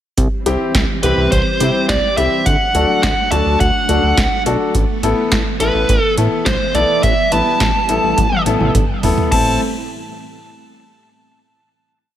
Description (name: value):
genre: synth-pop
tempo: 105 BPM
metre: 4/4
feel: straight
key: A dorian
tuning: A4 = 440 Hz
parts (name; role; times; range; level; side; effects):
- string machine, full ensemble; sustained chords; 0.2-9.6 s; A2 to E5; -24 LUFS; right 1 dB; ensemble chorus
- chorused synth bass; bass; 0.2-9.6 s; F#1 to C3; -19 LUFS; right 1 dB; none
- electro analog drum machine; drums; 0.2-9.5 s; crash cymbal, hi-hat, kick drum, snare drum, toms; -18 LUFS; equal; gated reverb
- warm concert grand piano; accompaniment; 0.5-9.6 s; B3 to B4; -20 LUFS; left 4 dB; none
- biting lead guitar; melody; 1.0-9.6 s; B4 to A5; -17 LUFS; right 1 dB; overdrive, tape echo
room: light reverb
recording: none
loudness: -13 LUFS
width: side -11 dB against mid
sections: 0.2-9.3 chorus; 9.3-11.6 final chord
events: drum fill 8.2-9.3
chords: 0.2 C; 2.5 D; 4.7 Asus2; 9.3 Am